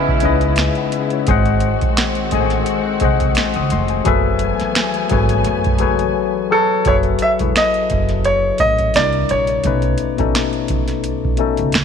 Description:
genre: R&B, neo-soul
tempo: 86 BPM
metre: 4/4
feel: swing 54% on 16ths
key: F# dorian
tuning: A4 = 444 Hz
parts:
  - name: tine electric piano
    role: accompaniment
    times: 0.0-11.8 s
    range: B2 to D#6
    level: -19 LUFS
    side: left 12 dB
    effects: medium stereo tremolo
  - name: warm studio string section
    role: sustained chords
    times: 0.0-6.8 s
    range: C#3 to G#5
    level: -24 LUFS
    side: equal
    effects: none
  - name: clear horn section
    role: stabs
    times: 0.0-0.5 s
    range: E3 to E4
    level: -24 LUFS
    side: right 12 dB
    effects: none
  - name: booming analog drum machine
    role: drums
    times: 0.1-11.8 s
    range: finger snaps, hi-hat, kick drum, snare drum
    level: -20 LUFS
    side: right 2 dB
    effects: none
  - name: upright bass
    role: bass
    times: 0.2-11.8 s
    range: E1 to F#2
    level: -21 LUFS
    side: right 2 dB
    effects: none
  - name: bright grand piano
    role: melody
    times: 6.5-11.8 s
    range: A4 to E5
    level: -17 LUFS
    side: right 1 dB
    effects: tape echo
room: light reverb, small room ambience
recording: 1960s-style stereo with parts hard left and right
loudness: -14 LUFS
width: side -7 dB against mid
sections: 0.0-6.9 A section; 6.9-11.8 B section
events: silent gap 6.2-6.9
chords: 0.0 C#m7; 1.3 G#7; 4.1 F#m11; 8.9 C9; 9.6 B9

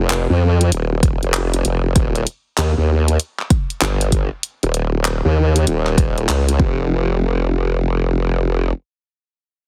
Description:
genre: glitch hop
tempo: 97 BPM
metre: 4/4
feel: swing 64% on 16ths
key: unclear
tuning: A4 = 440 Hz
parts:
  - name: formant-sweep wobble bass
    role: bass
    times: 0.0-8.7 s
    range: Eb1 to F2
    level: -18 LUFS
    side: equal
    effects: chorus, overdrive
  - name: pop drum kit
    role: drums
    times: 0.1-6.6 s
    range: handclaps, hi-hat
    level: -24 LUFS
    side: equal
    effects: none
  - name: electronic kick drum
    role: drums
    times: 1.0-6.8 s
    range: none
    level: -18 LUFS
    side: equal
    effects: none
room: little or no reverb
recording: heavily compressed radio sound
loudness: -18 LUFS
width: mono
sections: 0.0-6.9 A section; 6.9-9.4 B section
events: none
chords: none

